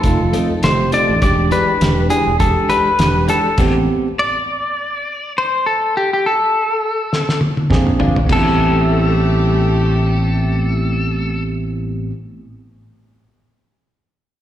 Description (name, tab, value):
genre	straight-eighth soul blues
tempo	102 BPM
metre	4/4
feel	swing 55% on 16ths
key	A minor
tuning	A4 = 438 Hz
part	clean lap steel guitar	melody	0.0-11.4 s	G4 to D5	-18 LUFS	left 1 dB	plate reverb, slapback echo
part	bell-like tine electric piano	accompaniment	0.0-4.1, 7.7-12.1 s	G#3 to Ab4	-21 LUFS	right 5 dB	slapback echo
part	fingered electric bass	bass	0.0-3.9, 7.7-12.1 s	E1 to F2	-18 LUFS	equal	none
part	cloth-damped thuddy drum kit	drums	0.0-8.4 s	crash cymbal, hi-hat, kick drum, snare drum, toms	-19 LUFS	equal	none
part	direct-recorded clean electric guitar	stabs	0.3-3.5, 8.0-12.2 s	A2 to A4	-24 LUFS	left 4 dB	phaser, slapback echo
part	warm horn section	sustained chords	0.9-3.8, 7.7-11.4 s	G#3 to Ab4	-26 LUFS	left 2 dB	plate reverb
room	light reverb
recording	live gig heard through the venue's PA, recital hall reverb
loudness	-14 LUFS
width	side -11 dB against mid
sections	0.0-8.3 A section; 8.3-10.7 B section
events	stop 3.6-7.7; drum fill 7.1-8.3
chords	0.0 F7; 1.2 E7#9; 3.6 Am7; 7.7 Bb7; 8.3 Am7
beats	0.05 0.64 | 1.23 1.81 2.40 2.99 | 3.58 4.17 4.76 5.35 | 5.94 6.53 7.12 7.71 | 8.29 8.88 9.47 10.06